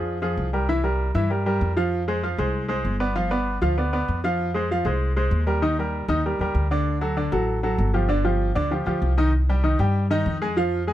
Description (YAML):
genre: latin, salsa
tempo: 194 BPM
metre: 4/4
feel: straight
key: C minor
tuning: A4 = 440 Hz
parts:
  - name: bright upright piano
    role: accompaniment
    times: 0.0-10.9 s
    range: D3 to Ab5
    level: -23 LUFS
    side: equal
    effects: none
  - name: upright bass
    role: bass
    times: 0.0-10.9 s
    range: G1 to G2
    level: -24 LUFS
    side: equal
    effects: none
room: little or no reverb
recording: close, detailed microphones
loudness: -21 LUFS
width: side -13 dB against mid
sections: 0.0-9.3 A section; 9.3-10.9 B section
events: none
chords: 0.0 Bb7sus2; 0.7 C7; 1.9 Fmadd9; 3.2 G7; 4.4 Fm7; 5.6 Ebmaj7; 6.9 D; 8.1 G7sus4; 9.3 Cm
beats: 0.07 0.38 | 0.69 1.00 1.31 1.61 | 1.92 2.23 2.54 2.85 | 3.16 3.47 3.78 4.08 | 4.39 4.70 5.01 5.32 | 5.63 5.94 6.25 6.55 | 6.86 7.17 7.48 7.79 | 8.10 8.41 8.71 9.02 | 9.33 9.64 9.95 10.26 | 10.57 10.88